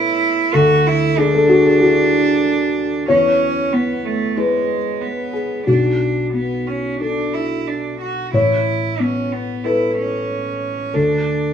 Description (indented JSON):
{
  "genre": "neoclassical piano and strings",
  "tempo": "92 BPM",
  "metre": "4/4",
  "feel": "rubato",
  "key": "A major",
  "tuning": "A4 = 441 Hz",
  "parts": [
    { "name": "rich cello", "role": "second line", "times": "0.0-11.5 s", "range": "G#3 to F#4", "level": "-20 LUFS", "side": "right 5 dB", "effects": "none" },
    { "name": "felt-muted upright piano", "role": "accompaniment", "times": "0.0-11.5 s", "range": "A1 to C#5", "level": "-17 LUFS", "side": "left 2 dB", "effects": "none" }
  ],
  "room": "moderate stone room reverb, RT60 1.0 s",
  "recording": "band playing live in one room",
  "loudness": "-15 LUFS",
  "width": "side -8 dB against mid",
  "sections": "0.0-11.5 A section",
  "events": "none",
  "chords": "0.0 Asus2; 0.5 Dadd9; 3.1 E; 5.7 Bm7; 8.3 Aadd9; 10.9 D5"
}